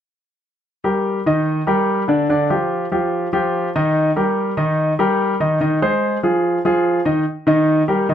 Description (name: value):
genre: jazz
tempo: 145 BPM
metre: 4/4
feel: straight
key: Eb major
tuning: A4 = 440 Hz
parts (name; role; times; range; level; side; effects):
- warm concert grand piano; solo; 0.8-8.1 s; D3 to Eb5; -16 LUFS; equal; none
room: moderate club reverb, RT60 0.5 s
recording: none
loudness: -16 LUFS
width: side -9 dB against mid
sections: 0.6-7.3 A section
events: none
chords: 0.6 Ebmaj7; 2.3 G5; 4.0 Eb; 5.6 Fm7; 6.4 Ebsus24; 7.3 Eb